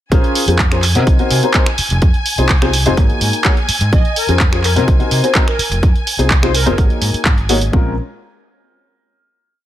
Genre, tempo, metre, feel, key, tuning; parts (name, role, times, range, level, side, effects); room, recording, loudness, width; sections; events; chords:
filtered disco house; 126 BPM; 4/4; straight; Bb minor; A4 = 441 Hz
dark baby grand piano; accompaniment; 0.1-7.9 s; Ab3 to Db5; -18 LUFS; left 2 dB; phaser, sidechain pumping
clear symphonic string section; sustained chords; 0.1-7.7 s; Ab5; -24 LUFS; equal; sidechain pumping
overdriven fingered electric bass; bass; 0.1-8.0 s; F1 to C3; -17 LUFS; equal; sidechain pumping
electronic kick drum; drums; 0.1-7.8 s; -14 LUFS; equal
punchy analog drum machine; drums; 0.1-7.7 s; finger snaps, handclaps, hi-hat; -18 LUFS; right 1 dB; sidechain pumping on hats
analog synth brass; melody; 3.9-6.8 s; Bb4 to Eb5; -23 LUFS; equal; chorus, sidechain pumping, digital delay
digital ambience; -11 LUFS; side -12 dB against mid
0.1-7.7 drop; 7.7-9.6 final chord
drop 0.1-7.7
0.1 Bbm7; 0.8 Cm7b5; 1.8 Fm7; 3.0 Ab7sus4; 3.9 Bbm7; 4.6 Cm7b5; 5.6 Fm7; 6.8 Ab7sus4; 7.7 Bbm7